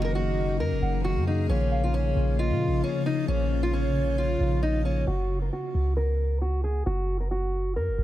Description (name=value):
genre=hip hop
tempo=134 BPM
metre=4/4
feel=half-time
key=F# major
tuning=A4 = 440 Hz
part: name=fingerpicked steel-string acoustic guitar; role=melody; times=0.0-8.0 s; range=C#4 to A#4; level=-30 LUFS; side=equal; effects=low-pass filter
part: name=hollow clarinet-like synth lead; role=second line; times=0.0-5.1 s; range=C#5 to F#5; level=-35 LUFS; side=right 2 dB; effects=chorus, digital delay
part: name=mellow tine electric piano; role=accompaniment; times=0.0-5.1 s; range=C#3 to F#4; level=-30 LUFS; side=left 5 dB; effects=phaser
part: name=granular cloud pad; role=sustained chords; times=0.0-5.0 s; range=C#3 to G#4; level=-34 LUFS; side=left 1 dB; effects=built-in reverb
part: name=warm 808-style bass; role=bass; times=0.0-8.0 s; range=F#1 to A#2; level=-26 LUFS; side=equal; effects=none
room=little or no reverb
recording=none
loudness=-24 LUFS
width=side -14 dB against mid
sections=0.0-5.1 A section; 5.1-8.0 B section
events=filter sweep on steel-string acoustic guitar 5.1-8.0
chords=0.0 F#6; 1.5 A#m; 5.1 F#